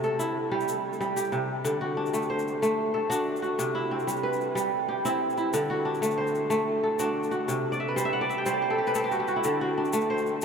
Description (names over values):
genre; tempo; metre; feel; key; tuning
west african traditional, West African string and xylophone music; 123 BPM (dotted quarters); 12/8; straight; D mixolydian; A4 = 440 Hz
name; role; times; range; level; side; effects
kora; arpeggios; 0.0-10.4 s; C3 to G5; -25 LUFS; equal; none
tube shaker; percussion; 0.0-10.4 s; none; -40 LUFS; left 6 dB; none
room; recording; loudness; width
wet huge ambient reverb, RT60 7.1 s; in a vast, echoing space; -25 LUFS; side -6 dB against mid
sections
0.0-1.7 A section; 1.7-10.4 B section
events
kora fill 7.7-9.4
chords
0.0 C; 1.7 D; 3.6 C; 5.5 D; 7.5 C5; 9.4 D